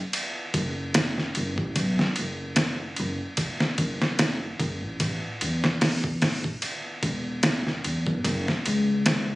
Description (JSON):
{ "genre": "trip hop", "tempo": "74 BPM", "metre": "4/4", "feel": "swing 56% on 16ths", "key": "unclear", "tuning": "A4 = 440 Hz", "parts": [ { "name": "trip hop sampler-style drum kit", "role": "drums", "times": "0.1-9.3 s", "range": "hi-hat, kick drum, ride cymbal, snare drum", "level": "-25 LUFS", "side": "equal", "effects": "vintage 12-bit sampler grit, small room ambience" }, { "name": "upright bass", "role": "bass", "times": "0.5-9.4 s", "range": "E1 to A2", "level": "-28 LUFS", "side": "equal", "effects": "none" } ], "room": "digital ambience", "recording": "recorded on a phone in the room, studio ambience", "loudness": "-24 LUFS", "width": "side -19 dB against mid", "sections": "0.0-9.4 A section", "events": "none", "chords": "none" }